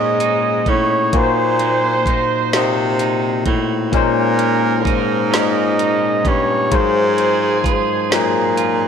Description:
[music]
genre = slow six-eight R&B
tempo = 43 BPM (dotted quarters)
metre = 6/8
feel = straight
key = Bb minor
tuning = A4 = 438 Hz
[part]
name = warm flugelhorn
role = melody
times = 0.0-8.9 s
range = Bb4 to Eb5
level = -19 LUFS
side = right 1 dB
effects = tape echo
[part]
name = electric guitar at the edge of break-up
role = second line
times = 0.0-8.9 s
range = Ab2 to F4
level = -25 LUFS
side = right 10 dB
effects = none
[part]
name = barky tine electric piano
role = accompaniment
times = 0.0-8.9 s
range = Bb2 to Eb5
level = -20 LUFS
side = left 11 dB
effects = none
[part]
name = clear horn section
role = stabs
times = 0.0-8.9 s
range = F3 to Db5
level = -26 LUFS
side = right 12 dB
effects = none
[part]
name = warm baritone saxophone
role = bass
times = 0.0-8.9 s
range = G2 to C3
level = -20 LUFS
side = equal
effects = none
[part]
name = smooth R&B drum kit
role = drums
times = 0.2-8.8 s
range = hi-hat, kick drum, snare drum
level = -21 LUFS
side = right 1 dB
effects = none
[sound]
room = moderate echo chamber reverb, RT60 2.6 s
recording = 1960s-style stereo with parts hard left and right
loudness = -14 LUFS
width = side -7 dB against mid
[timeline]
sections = 0.0-8.9 A section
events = none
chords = 0.0 Bbm11; 1.1 Cm7b5/Bb; 3.9 Bbm11; 6.7 Ab13

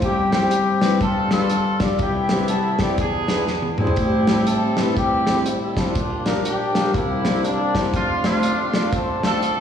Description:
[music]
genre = uptempo gospel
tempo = 121 BPM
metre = 4/4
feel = swing 62% on 8ths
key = C major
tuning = A4 = 440 Hz
[part]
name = mellow horn section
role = melody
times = 0.0-9.6 s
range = G3 to C5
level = -22 LUFS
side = equal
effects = slapback echo
[part]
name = warm concert grand piano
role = accompaniment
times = 0.0-9.6 s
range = F1 to D5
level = -22 LUFS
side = left 2 dB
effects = slapback echo
[part]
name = warm soul drum kit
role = drums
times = 0.0-9.6 s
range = hi-hat, kick drum, snare drum, toms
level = -24 LUFS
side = right 1 dB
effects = none
[part]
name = tonewheel organ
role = sustained chords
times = 4.0-9.6 s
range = D3 to A4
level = -29 LUFS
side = right 3 dB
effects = slow rotary speaker, overdrive, chorus vibrato
[sound]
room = light reverb, studio reverb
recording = live gig heard through the venue's PA, recital hall reverb, small room ambience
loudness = -18 LUFS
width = side -8 dB against mid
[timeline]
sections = 0.0-9.6 A section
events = drum fill 3.5-4.0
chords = 0.0 C/G; 1.0 G7; 2.0 Cmaj7; 3.0 E7; 4.0 Am7; 6.0 Bb6; 6.9 C9; 7.9 F6

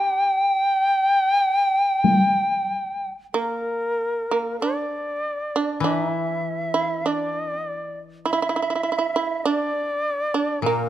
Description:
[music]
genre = japanese traditional, Japanese chamber music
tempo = 50 BPM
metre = 4/4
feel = rubato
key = G kumoi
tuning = A4 = 440 Hz
[part]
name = reedy shakuhachi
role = melody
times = 0.0-10.9 s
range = Bb4 to G5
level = -22 LUFS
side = equal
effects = none
[part]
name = shamisen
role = second line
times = 0.0-10.9 s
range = Bb3 to G4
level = -25 LUFS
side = right 4 dB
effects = none
[part]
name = taiko ensemble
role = percussion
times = 2.0-2.3 s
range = none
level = -21 LUFS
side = left 1 dB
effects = none
[part]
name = koto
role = accompaniment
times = 5.8-10.9 s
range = Bb2 to E3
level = -28 LUFS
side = left 6 dB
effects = none
[sound]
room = moderate recital hall reverb, RT60 1.6 s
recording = close, detailed microphones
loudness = -20 LUFS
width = side -12 dB against mid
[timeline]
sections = 0.0-4.6 A section; 4.6-10.9 B section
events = none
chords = none

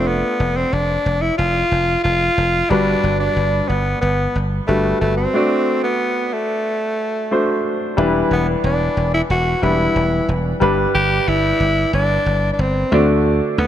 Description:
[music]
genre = 1980s-style pop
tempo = 91 BPM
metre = 4/4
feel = straight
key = G major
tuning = A4 = 438 Hz
[part]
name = raspy tenor saxophone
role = melody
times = 0.0-13.7 s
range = A3 to G4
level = -19 LUFS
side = equal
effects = none
[part]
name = clear concert grand piano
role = accompaniment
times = 0.0-13.7 s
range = G2 to D5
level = -20 LUFS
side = equal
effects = none
[part]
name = dry thumbed slap bass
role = bass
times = 0.0-13.7 s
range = E1 to D2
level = -20 LUFS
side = equal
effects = none
[sound]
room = moderate lush hall reverb, RT60 2.9 s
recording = none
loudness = -15 LUFS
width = side -11 dB against mid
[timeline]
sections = 0.0-8.0 A section; 8.0-13.7 B section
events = none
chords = 0.0 Dm/F; 2.7 Gmaj7; 5.3 D7; 8.0 Em7; 10.6 G; 12.9 D

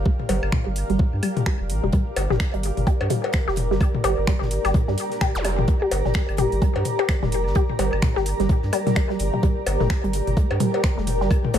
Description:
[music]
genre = minimal techno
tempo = 128 BPM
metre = 4/4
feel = swing 59% on 16ths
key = G minor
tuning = A4 = 441 Hz
[part]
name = saturated sub bass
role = bass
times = 0.0-11.6 s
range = F1 to G2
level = -25 LUFS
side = equal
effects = sidechain pumping
[part]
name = granular cloud pad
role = texture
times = 0.0-11.6 s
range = G4 to Bb5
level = -28 LUFS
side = equal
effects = built-in reverb, sidechain pumping
[part]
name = resonant blip pluck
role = riff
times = 0.1-11.6 s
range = G3 to G4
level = -26 LUFS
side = equal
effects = phaser, sidechain pumping, digital delay
[part]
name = electronic kick drum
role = drums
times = 0.1-11.4 s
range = none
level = -21 LUFS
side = equal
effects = overdrive
[part]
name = electronic toms, cowbell and woodblock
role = percussion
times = 0.2-11.6 s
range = none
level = -28 LUFS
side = left 4 dB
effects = digital delay
[part]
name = garage drum kit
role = drums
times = 0.3-11.6 s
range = finger snaps, hi-hat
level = -31 LUFS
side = right 1 dB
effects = overdrive
[part]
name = modern studio drum kit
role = drums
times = 1.9-11.6 s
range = hi-hat, snare drum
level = -42 LUFS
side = left 2 dB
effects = sidechain pumping on hats, high-pass filter on hats, high-pass filter on snare, high-pass filter on room
[part]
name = zap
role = sound effects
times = 5.3-5.4 s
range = none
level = -31 LUFS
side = right 1 dB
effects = none
[sound]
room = light reverb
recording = none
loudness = -19 LUFS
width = side -9 dB against mid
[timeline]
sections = 0.0-11.6 A section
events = filter sweep on synth pluck 0.0-11.6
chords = 0.0 Gm

